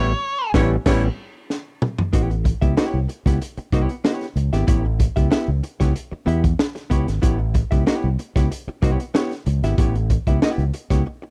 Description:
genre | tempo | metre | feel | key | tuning
funk | 94 BPM | 4/4 | straight | A mixolydian | A4 = 439 Hz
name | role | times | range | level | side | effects
octave-fuzz lead guitar | melody | 0.0-0.5 s | C#5 | -25 LUFS | equal | distortion
warm horn section | second line | 0.0-1.0 s | E4 to C#5 | -29 LUFS | equal | none
overdriven clav | stabs | 0.0-1.1 s | E3 to E4 | -25 LUFS | equal | none
fretless electric bass | bass | 0.0-11.0 s | G#1 to E2 | -23 LUFS | equal | none
crunchy breakbeat drum kit | drums | 0.5-11.0 s | crash cymbal, hi-hat, kick drum, snare drum, toms | -23 LUFS | equal | none
archtop guitar, miked and amplified | accompaniment | 2.1-11.3 s | B3 to E5 | -28 LUFS | equal | none
room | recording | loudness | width
studio ambience | dry, close 1970s-style studio recording | -21 LUFS | mono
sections
0.0-2.1 A section; 2.1-11.3 B section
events
break 0.0-2.1, 11.0; band accent 0.0-2.1; drum fill 1.5-2.1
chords
0.0 A9

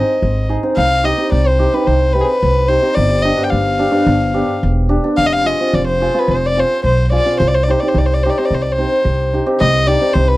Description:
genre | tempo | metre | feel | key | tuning
klezmer | 109 BPM | 4/4 | straight | C harmonic minor | A4 = 441 Hz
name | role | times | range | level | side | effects
warm violin | melody | 0.0-10.4 s | Ab4 to G5 | -16 LUFS | left 1 dB | none
hammered dulcimer | accompaniment | 0.0-10.2 s | B3 to Ab4 | -18 LUFS | equal | none
upright bass | bass | 0.2-10.4 s | E1 to C2 | -16 LUFS | equal | none
room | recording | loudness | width
little or no reverb | dry, close 1970s-style studio recording | -12 LUFS | side -18 dB against mid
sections
0.0-9.6 A section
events
none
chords
0.0 Ab; 0.8 Cm; 3.0 G; 5.2 Fm; 7.4 Cm

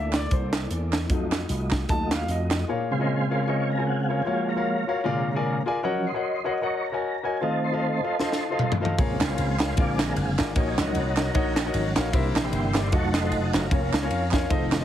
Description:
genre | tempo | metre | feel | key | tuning
uptempo gospel | 152 BPM | 4/4 | swing 57% on 8ths | Bb minor | A4 = 440 Hz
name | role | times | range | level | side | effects
warm baby grand piano | accompaniment | 0.0-14.8 s | Bb2 to A5 | -28 LUFS | left 3 dB | none
mellow tonewheel organ | sustained chords | 0.0-14.8 s | C3 to D6 | -28 LUFS | right 1 dB | fast rotary speaker, chorus vibrato
slap bass with an envelope filter | bass | 0.0-2.6, 9.0-14.8 s | F1 to F2 | -28 LUFS | equal | none
crisp fusion drum kit | drums | 0.1-2.6, 8.2-14.8 s | hi-hat, kick drum, ride cymbal, snare drum, toms | -26 LUFS | equal | none
group handclap | percussion | 0.1-2.6, 9.2-14.8 s | none | -35 LUFS | right 7 dB | none
room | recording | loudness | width
light reverb | heavily compressed radio sound, multiband compression | -22 LUFS | side -11 dB against mid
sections
0.0-2.7 A section; 2.7-14.8 B section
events
grand piano solo 0.0-2.7; tonewheel organ solo 2.7-14.8; drum fill 8.2-9.0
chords
0.0 C13; 1.1 F7b9; 2.7 Bbm7; 4.3 Gbmaj7; 5.0 Bb7; 5.8 Ebm7; 7.4 F7; 9.0 Bbm7; 9.8 Bb7; 10.6 Ebm7/Bb; 12.1 C7; 12.9 F7b9; 13.7 Bbm/F

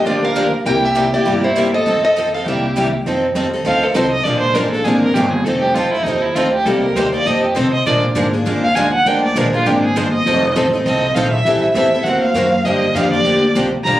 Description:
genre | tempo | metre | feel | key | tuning
acoustic string swing (jazz manouche) | 200 BPM | 4/4 | swing 57% on 8ths | F mixolydian | A4 = 441 Hz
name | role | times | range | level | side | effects
picked steel-string acoustic guitar | melody | 0.0-2.9 s | C5 to G5 | -18 LUFS | equal | none
warm violin | second line | 0.0-14.0 s | Eb4 to Bb5 | -18 LUFS | right 1 dB | none
picked steel-string acoustic guitar | accompaniment | 0.0-14.0 s | C3 to C5 | -18 LUFS | left 2 dB | none
picked steel-string acoustic guitar | accompaniment | 0.1-14.0 s | C3 to Bb4 | -22 LUFS | right 3 dB | none
upright bass | bass | 0.1-14.0 s | F1 to C3 | -21 LUFS | equal | none
room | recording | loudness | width
wet studio reverb, RT60 0.6 s | recorded on a phone in the room, club reverb, compression | -13 LUFS | side -14 dB against mid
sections
0.0-3.1 A section; 3.1-14.0 B section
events
violin solo 3.1-14.0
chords
0.0 Gm7; 0.7 C7; 1.9 F7; 2.5 C7; 3.1 F7; 4.3 Bb7; 5.5 F7; 6.7 Cm7; 7.3 F7; 7.9 Bb7; 10.3 F7; 11.5 Am7; 12.1 D7alt; 12.7 Gm7

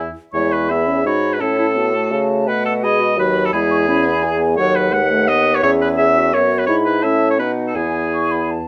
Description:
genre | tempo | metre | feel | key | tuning
quick classical-period movement for wind quintet | 170 BPM | 3/4 | rubato | E major | A4 = 439 Hz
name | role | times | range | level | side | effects
concert flute | melody | 0.0-8.7 s | E5 to C#6 | -28 LUFS | equal | none
clear oboe | second line | 0.0-8.5 s | E4 to F#5 | -21 LUFS | equal | none
bright clarinet | accompaniment | 0.0-8.7 s | D#4 to B4 | -26 LUFS | equal | none
mellow French horn | accompaniment | 0.0-8.7 s | F#3 to E4 | -27 LUFS | equal | none
mellow bassoon | bass | 0.0-8.7 s | D#2 to C#3 | -21 LUFS | equal | none
room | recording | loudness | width
light reverb | none | -17 LUFS | mono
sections
0.3-8.7 A section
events
none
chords
0.3 E; 1.4 A; 2.5 B; 3.5 E; 4.6 B7/D#; 5.6 E; 6.7 E/G#; 7.0 A; 7.4 B; 7.8 E

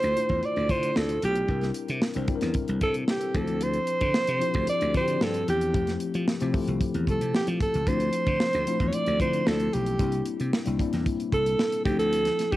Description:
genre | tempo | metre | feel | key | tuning
polished 1980s jazz-funk pop | 113 BPM | 4/4 | straight | D minor | A4 = 440 Hz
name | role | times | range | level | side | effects
clear alto saxophone | melody | 0.0-12.6 s | G4 to D5 | -27 LUFS | right 2 dB | cassette tape
mellow tine electric piano | accompaniment | 0.0-12.6 s | E3 to D5 | -30 LUFS | left 5 dB | medium stereo tremolo, lush chorus, cassette tape
slap bass | bass | 0.0-12.6 s | B1 to F3 | -29 LUFS | equal | none
tight funk drum kit | drums | 0.0-12.6 s | hi-hat, kick drum, snare drum | -28 LUFS | equal | none
room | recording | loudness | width
light reverb, small room ambience | home recording on cassette | -23 LUFS | side -16 dB against mid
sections
0.0-12.6 A section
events
none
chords
0.0 Dm9; 1.5 C9; 3.4 Dm9; 5.7 Fmaj9; 7.9 Dm9; 10.0 C9; 11.9 Dm9

